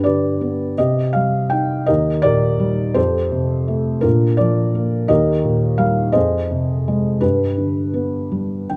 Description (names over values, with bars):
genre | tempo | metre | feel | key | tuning
classical, lyrical solo piano | 56 BPM (dotted quarters) | 6/8 | uneven beats, rubato | unclear | A4 = 437 Hz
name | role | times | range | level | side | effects
felt-muted upright piano | solo | 0.0-8.8 s | Eb2 to G5 | -18 LUFS | equal | none
room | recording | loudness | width
light reverb | close, detailed microphones | -18 LUFS | mono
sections
0.0-8.8 A section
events
felt piano fill 8.3-8.8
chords
0.0 G; 0.8 Cm; 1.9 Eb; 3.0 Fadd9; 4.0 Bb; 5.1 Eb; 6.2 Fm7; 7.2 G